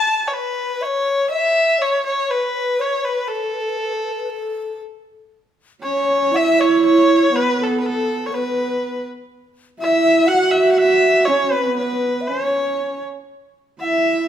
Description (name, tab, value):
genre	chinese traditional, Chinese chamber ensemble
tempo	60 BPM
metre	2/4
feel	straight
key	A gong mode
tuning	A4 = 440 Hz
part	rich erhu	melody	0.0-14.3 s	A4 to A5	-20 LUFS	equal	none
part	breathy mellow low xiao	second line	0.0-14.3 s	A4 to F#5	-22 LUFS	left 5 dB	none
part	dark horsehead fiddle	second line	5.8-14.3 s	B3 to F#4	-18 LUFS	right 4 dB	none
room	moderate recital hall reverb, RT60 1.4 s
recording	none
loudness	-16 LUFS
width	side -10 dB against mid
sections	0.0-5.3 A section; 5.3-14.3 B section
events	none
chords	none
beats	0.31 | 1.30 2.29 | 3.29 4.30 | 5.31 6.32 | 7.32 8.31 | 9.30 10.29 | 11.28 12.28 | 13.29